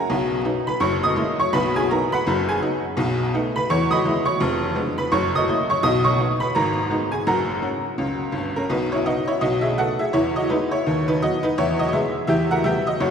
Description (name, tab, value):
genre	jazz, stride piano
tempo	167 BPM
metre	4/4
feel	swing 61% on 8ths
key	B major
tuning	A4 = 441 Hz
part	tack piano	solo	0.0-13.1 s	F1 to D#6	-19 LUFS	equal	none
room	wet cathedral reverb, RT60 4.4 s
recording	recorded in a church or concert hall, vinyl crackle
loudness	-19 LUFS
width	side -7 dB against mid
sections	0.0-8.7 A section; 8.7-13.1 B section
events	none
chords	0.1 B; 0.8 F#9; 1.5 B; 3.0 B7; 3.7 Emaj7; 4.4 Fdim7; 5.1 F#7; 5.8 B; 6.5 G#m; 7.3 F#; 8.7 B; 9.4 B5; 10.1 Emaj7; 10.9 B/D#; 11.6 E; 12.3 Em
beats	| 0.09 0.45 0.81 1.17 | 1.52 1.88 2.24 2.60 | 2.96 3.32 3.67 4.03 | 4.39 4.75 5.11 5.47 | 5.83 6.19 6.54 6.90 | 7.26 7.62 7.98 8.34 | 8.70 9.06 9.42 9.78 | 10.14 10.50 10.86 11.22 | 11.58 11.94 12.30 12.66 | 13.02